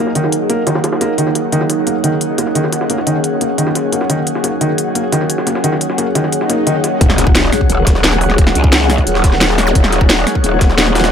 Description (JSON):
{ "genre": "dark technical drum and bass", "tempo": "175 BPM", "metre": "4/4", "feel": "straight", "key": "Eb minor", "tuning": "A4 = 440 Hz", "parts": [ { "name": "metallic inharmonic drone", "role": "sustained chords", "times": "0.0-11.1 s", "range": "Gb3 to Bb4", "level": "-20 LUFS", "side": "equal", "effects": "chorus, built-in reverb, sidechain pumping" }, { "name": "felt-muted upright piano", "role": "arpeggios", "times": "0.0-6.7 s", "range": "Eb3 to Bb3", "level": "-18 LUFS", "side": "equal", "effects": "sidechain pumping, low-pass filter, dub echo" }, { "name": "airy breathy pad", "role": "texture", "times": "0.0-11.1 s", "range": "Eb4 to Gb5", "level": "-19 LUFS", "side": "left 1 dB", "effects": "chorus, phaser, sidechain pumping" }, { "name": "jungle sampler-style drum kit", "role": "drums", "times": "0.1-11.1 s", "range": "hi-hat, snare drum", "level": "-23 LUFS", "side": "equal", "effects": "high-pass filter on snare, low-pass filter on snare, high-pass filter on hats, low-pass filter on hats" }, { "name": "drum and bass drum kit", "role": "drums", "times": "0.2-11.1 s", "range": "hi-hat, snare drum", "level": "-16 LUFS", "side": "equal", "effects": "none" }, { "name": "swell, impact and zap", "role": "sound effects", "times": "6.4-9.8 s", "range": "none", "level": "-21 LUFS", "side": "equal", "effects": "none" }, { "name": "growl bass", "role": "bass", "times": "7.0-11.1 s", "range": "Eb1 to Db2", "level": "-15 LUFS", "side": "equal", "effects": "chorus, overdrive, sidechain pumping" }, { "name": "electronic kick drum", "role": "drums", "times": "7.0-10.7 s", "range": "none", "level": "-12 LUFS", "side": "equal", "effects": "none" } ], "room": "light reverb", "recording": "none", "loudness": "-11 LUFS", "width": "side -8 dB against mid", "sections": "0.0-7.0 A section; 7.0-11.1 B section", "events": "swell 6.4-7.0; drop 7.0-11.1; impact 7.0-8.4", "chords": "0.0 Ebm", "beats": "| 0.15 0.50 0.84 1.18 | 1.52 1.87 2.21 2.55 | 2.90 3.24 3.58 3.92 | 4.27 4.61 4.95 5.30 | 5.64 5.98 6.33 6.67 | 7.01 7.35 7.70 8.04 | 8.38 8.72 9.07 9.41 | 9.75 10.10 10.44 10.78" }